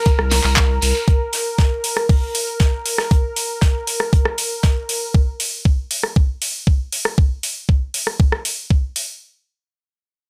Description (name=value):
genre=acid house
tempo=118 BPM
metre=4/4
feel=straight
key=unclear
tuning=A4 = 440 Hz
part: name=warm analog pad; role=sustained chords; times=0.0-5.2 s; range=Bb4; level=-27 LUFS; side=equal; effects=chorus, tremolo, sidechain pumping
part: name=electronic kick drum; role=drums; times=0.1-8.8 s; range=none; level=-17 LUFS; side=equal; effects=overdrive
part: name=modern studio drum kit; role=drums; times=0.1-5.0 s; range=hi-hat, snare drum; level=-33 LUFS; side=equal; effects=high-pass filter on hats, high-pass filter on snare, high-pass filter on room
part: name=shekere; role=percussion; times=0.1-1.0 s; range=none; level=-29 LUFS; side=equal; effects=none
part: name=saturated sub bass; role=bass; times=0.2-0.9 s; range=C2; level=-20 LUFS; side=equal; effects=sidechain pumping
part: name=electro analog drum machine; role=drums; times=0.2-9.1 s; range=handclaps, hi-hat, rim click, snare drum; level=-23 LUFS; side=equal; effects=none
room=little or no reverb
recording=none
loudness=-19 LUFS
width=mono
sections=0.0-9.2 A section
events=none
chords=none